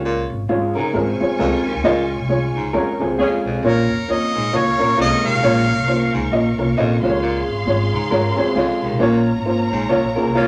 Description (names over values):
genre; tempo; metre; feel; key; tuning
soul; 134 BPM; 4/4; swing 58% on 8ths; Bb minor; A4 = 438 Hz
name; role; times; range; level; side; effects
dark upright piano; accompaniment; 0.0-10.5 s; Ab3 to Eb5; -22 LUFS; equal; none
bright baritone saxophone; riff; 0.0-10.5 s; Eb2 to Bb2; -28 LUFS; equal; none
upright bass; bass; 0.0-10.4 s; Ab1 to Db3; -26 LUFS; equal; none
electric guitar through a small old amp; riff; 0.5-10.5 s; Ab3 to Db5; -26 LUFS; equal; none
bright studio string section; second line; 0.8-10.5 s; F4 to Db6; -30 LUFS; equal; none
mellow saxophone section; second line; 2.7-3.6, 9.9-10.5 s; Bb3 to Ab4; -26 LUFS; equal; none
clear harmonica; melody; 3.7-6.1 s; Bb4 to F5; -22 LUFS; equal; none
room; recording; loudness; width
wet club reverb, RT60 0.5 s; none; -18 LUFS; mono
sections
0.0-10.5 A section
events
band accent 1.8-3.6, 9.0-10.5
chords
0.0 Db; 3.6 Bbm; 7.0 Db; 9.0 Bbm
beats
| 0.05 0.50 0.95 1.40 | 1.85 2.29 2.74 3.19 | 3.64 4.09 4.53 4.98 | 5.43 5.88 6.33 6.77 | 7.22 7.67 8.11 8.56 | 9.01 9.46 9.90 10.35